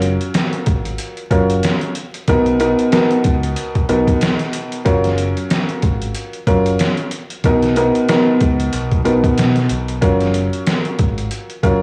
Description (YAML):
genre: hip hop, boom-bap hip-hop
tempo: 93 BPM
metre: 4/4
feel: swing 58% on 16ths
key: F# major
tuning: A4 = 444 Hz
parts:
  - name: warm upright piano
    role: accompaniment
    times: 0.0-11.8 s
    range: B2 to A#4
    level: -19 LUFS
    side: equal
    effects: high-pass filter, low-pass filter
  - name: deep dub fingered electric bass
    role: bass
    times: 0.0-11.8 s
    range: F#1 to B2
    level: -23 LUFS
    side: equal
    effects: transformer saturation
  - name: trip hop sampler-style drum kit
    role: drums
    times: 0.0-11.8 s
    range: hi-hat, kick drum, snare drum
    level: -21 LUFS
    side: equal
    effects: overdrive
room: light reverb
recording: dry, gritty hardware recording, transformer saturation, vinyl crackle, small room ambience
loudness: -17 LUFS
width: mono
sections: 0.0-11.8 A section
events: none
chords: 0.0 F#maj7; 2.3 Bmaj7; 4.9 F#maj7; 7.4 Bmaj7; 10.0 F#maj7